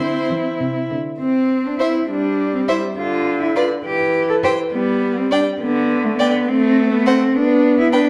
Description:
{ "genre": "quick classical-period movement for string quartet", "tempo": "68 BPM (dotted quarters)", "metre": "6/8", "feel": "straight", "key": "C major", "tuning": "A4 = 439 Hz", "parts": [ { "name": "rich violin", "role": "melody", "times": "0.0-8.1 s", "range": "C5 to G5", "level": "-30 LUFS", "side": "equal", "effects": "none" }, { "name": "warm violin", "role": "second line", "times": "0.0-8.1 s", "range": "E4 to D5", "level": "-24 LUFS", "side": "equal", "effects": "none" }, { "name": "rich viola", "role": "accompaniment", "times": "0.0-8.1 s", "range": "D3 to C4", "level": "-23 LUFS", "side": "equal", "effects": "none" }, { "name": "rich cello", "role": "bass", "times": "0.0-8.1 s", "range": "C3 to A4", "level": "-21 LUFS", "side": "equal", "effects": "none" } ], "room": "moderate recital hall reverb, RT60 1.5 s", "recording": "dark, warm production", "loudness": "-18 LUFS", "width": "mono", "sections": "0.0-1.2 A section; 1.2-8.1 A section", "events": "none", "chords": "0.0 C; 3.0 Bdim/D (rootless); 3.9 C/E (rootless); 4.7 G; 6.5 F#dim/A (rootless); 7.4 G/B (rootless)" }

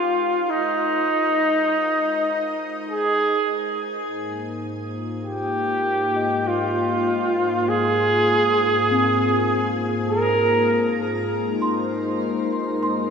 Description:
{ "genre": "ambient", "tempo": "50 BPM", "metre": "3/4", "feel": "straight", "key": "Ab major", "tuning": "A4 = 442 Hz", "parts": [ { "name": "warm flugelhorn", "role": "melody", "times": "0.0-10.9 s", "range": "Eb4 to Bb4", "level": "-20 LUFS", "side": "right 1 dB", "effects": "shimmer reverb, ping-pong delay" }, { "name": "warm analog pad", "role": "sustained chords", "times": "0.0-13.1 s", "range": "Ab2 to C5", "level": "-26 LUFS", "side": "left 3 dB", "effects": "chorus" }, { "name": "large celesta", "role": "arpeggios", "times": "0.0-13.1 s", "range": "C4 to C6", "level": "-28 LUFS", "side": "left 3 dB", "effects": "shimmer reverb, ping-pong delay" } ], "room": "wet cathedral reverb, RT60 5.7 s", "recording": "none", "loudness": "-19 LUFS", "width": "side -6 dB against mid", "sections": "0.0-13.1 A section", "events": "fade-in on analog synth pad 0.0-13.1; fade-in on celesta 0.0-13.1", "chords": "0.0 Ab" }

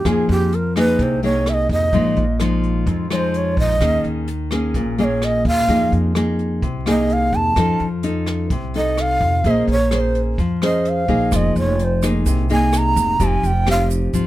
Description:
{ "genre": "bossa nova", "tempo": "128 BPM", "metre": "4/4", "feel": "straight", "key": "F minor", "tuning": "A4 = 438 Hz", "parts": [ { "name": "breathy bright long shakuhachi", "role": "melody", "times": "0.0-13.8 s", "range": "G4 to Bb5", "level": "-20 LUFS", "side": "right 2 dB", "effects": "none" }, { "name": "nylon-string guitar", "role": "accompaniment", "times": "0.0-14.3 s", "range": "F2 to C5", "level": "-20 LUFS", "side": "left 2 dB", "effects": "none" }, { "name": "upright bass", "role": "bass", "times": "0.0-14.3 s", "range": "F1 to F2", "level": "-22 LUFS", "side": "right 1 dB", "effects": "none" }, { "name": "jazz brush drum kit", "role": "drums", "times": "0.1-14.2 s", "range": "hi-hat, kick drum, rim click", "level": "-27 LUFS", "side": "equal", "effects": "none" }, { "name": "egg shaker", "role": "percussion", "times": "11.3-14.3 s", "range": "none", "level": "-33 LUFS", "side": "right 12 dB", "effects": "none" } ], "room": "little or no reverb", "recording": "close, detailed microphones", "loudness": "-16 LUFS", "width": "side -15 dB against mid", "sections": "0.0-14.3 A section", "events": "shakuhachi solo 0.0-14.3", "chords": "0.1 Fm7; 1.9 Bb7sus4; 3.8 Eb7sus4; 5.7 Fm7; 7.6 F7b13; 9.4 Bbm9; 11.3 Fm7; 13.2 Fm9" }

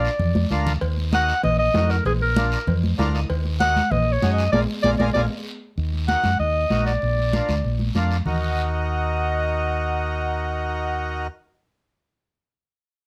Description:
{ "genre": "latin, cumbia", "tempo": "194 BPM", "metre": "4/4", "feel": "straight", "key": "Eb harmonic minor", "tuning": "A4 = 440 Hz", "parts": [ { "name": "clear clarinet", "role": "melody", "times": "0.0-11.3 s", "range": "Ab4 to Gb5", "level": "-26 LUFS", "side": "equal", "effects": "none" }, { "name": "accordion", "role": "accompaniment", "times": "0.0-11.3 s", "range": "D4 to F5", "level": "-30 LUFS", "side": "equal", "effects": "none" }, { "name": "fingered electric bass", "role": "bass", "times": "0.0-11.3 s", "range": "Bb1 to Gb2", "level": "-26 LUFS", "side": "equal", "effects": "none" }, { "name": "guiro", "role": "percussion", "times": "0.0-8.3 s", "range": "none", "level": "-40 LUFS", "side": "equal", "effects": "none" }, { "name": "congas", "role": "percussion", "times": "0.2-8.3 s", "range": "none", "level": "-29 LUFS", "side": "equal", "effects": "none" }, { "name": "cowbell and timbales", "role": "percussion", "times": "0.8-5.2 s", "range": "none", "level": "-33 LUFS", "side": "equal", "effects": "none" } ], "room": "light reverb", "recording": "none", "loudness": "-22 LUFS", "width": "mono", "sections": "0.0-5.8 A section; 5.8-8.3 B section; 8.3-10.7 C section", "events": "drum fill 0.4-0.8, 4.8-5.8; accordion fill 2.8-3.3; band accent 4.5-5.8", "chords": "0.0 Bb; 0.8 Ebm; 2.1 Bb; 3.3 Ebm; 4.5 Bb7(no3); 5.8 Ebm; 7.0 Bb; 8.3 Ebm" }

